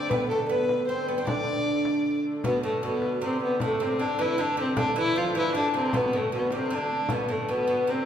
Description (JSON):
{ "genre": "medieval dance", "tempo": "155 BPM", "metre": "3/4", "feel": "straight", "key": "unclear", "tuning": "A4 = 440 Hz", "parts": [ { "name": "dark fiddle", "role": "melody", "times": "0.0-8.1 s", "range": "A3 to D5", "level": "-26 LUFS", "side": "left 2 dB", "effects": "none" }, { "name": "oud", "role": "second line", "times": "0.0-8.1 s", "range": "A2 to D4", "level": "-29 LUFS", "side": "right 3 dB", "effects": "slapback echo" }, { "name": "dark hurdy-gurdy", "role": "drone", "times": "0.0-8.1 s", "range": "D3 to A3", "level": "-36 LUFS", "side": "left 1 dB", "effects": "none" }, { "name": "frame drum", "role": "percussion", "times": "0.1-7.3 s", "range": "none", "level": "-35 LUFS", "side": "left 2 dB", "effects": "none" } ], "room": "wet recital hall reverb, RT60 1.8 s", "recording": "heard from further back in the room", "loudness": "-24 LUFS", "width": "side -9 dB against mid", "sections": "0.0-2.4 A section; 2.4-8.1 A section", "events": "none", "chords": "none" }